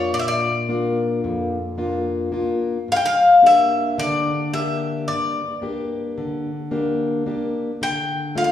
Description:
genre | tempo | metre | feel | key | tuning
greek folk, Greek bouzouki band | 109 BPM (eighths) | 9/8 | straight | unclear | A4 = 443 Hz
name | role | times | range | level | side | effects
Greek bouzouki | melody | 0.0-8.5 s | C#5 to G5 | -17 LUFS | left 2 dB | none
fingerpicked plugged-in steel-string acoustic guitar | accompaniment | 0.0-8.5 s | F2 to G4 | -23 LUFS | left 2 dB | none
room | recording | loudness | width
wet recital hall reverb, RT60 1.6 s | recorded in a church or concert hall, studio reverb | -18 LUFS | side -10 dB against mid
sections
0.0-8.5 A section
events
none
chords
0.0 Bb; 2.9 Gm; 7.8 Dm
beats
0.14 0.69 1.24 1.79 2.34 | 2.89 3.44 3.99 4.54 5.08 5.63 6.18 6.73 7.28 | 7.82 8.37

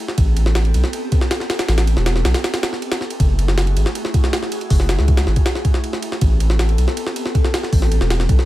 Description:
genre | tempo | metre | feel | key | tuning
drum and bass, jungle | 159 BPM | 4/4 | straight | unclear | A4 = 441 Hz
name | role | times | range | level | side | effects
airy breathy pad | sustained chords | 0.0-8.5 s | A3 to A4 | -26 LUFS | equal | chorus
jungle sampler-style drum kit | drums | 0.1-8.5 s | hi-hat, kick drum, ride cymbal, snare drum | -18 LUFS | equal | none
saturated sub bass | bass | 0.2-8.4 s | E1 to C#2 | -16 LUFS | equal | none
room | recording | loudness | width
little or no reverb | none | -15 LUFS | side -15 dB against mid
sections
0.0-8.5 A section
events
none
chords
0.2 Am9; 3.2 F#m9; 6.2 Am9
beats
| 0.18 0.56 0.93 1.31 | 1.69 2.06 2.44 2.82 | 3.20 3.58 3.95 4.33 | 4.71 5.08 5.46 5.84 | 6.22 6.59 6.97 7.35 | 7.73 8.10

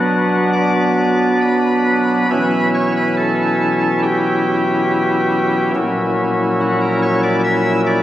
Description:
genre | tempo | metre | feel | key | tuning
classical, chorale-style piece for pipe organ | 70 BPM | 4/4 | rubato | B minor | A4 = 436 Hz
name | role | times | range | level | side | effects
pipe organ, cornet | solo | 0.0-8.0 s | A#1 to E5 | -14 LUFS | equal | none
room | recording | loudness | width
wet church reverb, RT60 3.0 s | recorded on a phone in the room, studio reverb | -14 LUFS | side -13 dB against mid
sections
0.0-8.0 A section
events
none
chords
0.0 Bm; 2.3 C#m7b5/B; 5.7 F#7/A#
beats
0.53 1.42 | 2.30 3.17 4.03 4.89 | 5.75 6.59 7.44

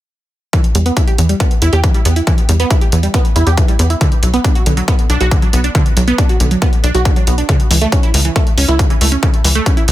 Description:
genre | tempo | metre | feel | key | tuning
uplifting trance | 138 BPM | 4/4 | straight | E dorian | A4 = 441 Hz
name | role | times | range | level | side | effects
wide unison pluck | arpeggios | 0.5-9.9 s | C#3 to G4 | -17 LUFS | right 3 dB | sidechain pumping, dub echo
electronic hi-hat | drums | 0.5-9.9 s | none | -22 LUFS | equal | overdrive, sidechain pumping on hats
electronic kick drum | drums | 0.5-9.7 s | none | -13 LUFS | equal | none
tight sequencer bass | bass | 0.7-9.9 s | B1 to E2 | -13 LUFS | left 1 dB | sidechain pumping
room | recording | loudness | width
little or no reverb | none | -10 LUFS | side -14 dB against mid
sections
0.5-9.9 A section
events
none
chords
0.5 Em; 4.0 Bm; 7.5 A/C# (rootless)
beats
| 0.53 0.97 1.40 1.84 | 2.27 2.71 3.14 3.58 | 4.01 4.45 4.88 5.32 | 5.75 6.18 6.62 7.05 | 7.49 7.92 8.36 8.79 | 9.23 9.66

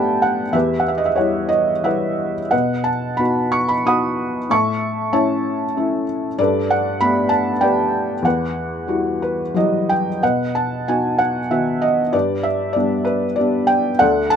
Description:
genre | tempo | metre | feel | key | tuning
classical, lyrical solo piano | 87-98 BPM | 3/4 | rubato | B mixolydian | A4 = 439 Hz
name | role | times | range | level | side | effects
felt-muted upright piano | solo | 0.0-14.4 s | D2 to D#6 | -16 LUFS | equal | none
room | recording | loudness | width
light reverb | minimal, uncompressed stereo recording | -16 LUFS | side -8 dB against mid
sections
0.0-10.2 A section; 10.2-14.4 B section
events
none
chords
0.0 Gadd9; 0.5 Emadd9; 2.5 B; 4.5 A; 6.4 Gadd9; 8.3 Emadd9; 10.2 B; 12.1 G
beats
| 0.54 1.19 1.85 | 2.53 3.20 3.86 | 4.50 5.13 5.76 | 6.39 7.01 7.63 | 8.25 8.88 9.55 | 10.22 10.87 11.51 | 12.14 12.76 13.38 | 14.01

